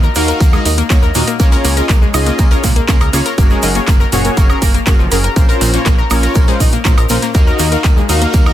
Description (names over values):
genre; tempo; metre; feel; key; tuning
progressive house; 121 BPM; 4/4; straight; unclear; A4 = 439 Hz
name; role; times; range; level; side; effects
analog pluck; arpeggios; 0.0-8.5 s; Bb2 to Bb4; -18 LUFS; equal; chorus, sidechain pumping, dub echo
fat analog bass; bass; 0.0-8.5 s; Gb1 to Eb2; -17 LUFS; equal; sidechain pumping
tube shaker; percussion; 0.0-8.5 s; none; -28 LUFS; right 4 dB; none
soft supersaw; stabs; 0.2-8.5 s; Db4 to F5; -18 LUFS; left 2 dB; sidechain pumping, dub echo
deep house drum kit; drums; 0.2-8.5 s; handclaps, hi-hat, woodblock; -21 LUFS; equal; overdrive, sidechain pumping on hats, sidechain pumping on perc, sidechain pumping on cymbals
warm soul drum kit; drums; 0.2-8.5 s; hi-hat, snare drum, tambourine; -30 LUFS; left 1 dB; none
electronic kick drum; drums; 0.4-8.4 s; none; -11 LUFS; equal; none
room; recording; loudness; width
small room ambience; dense, heavily limited modern master; -10 LUFS; side -12 dB against mid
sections
0.0-8.5 A section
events
none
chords
0.0 Ebm; 1.4 Db; 3.4 Gbadd9; 5.4 Bbmadd9; 7.3 Ebm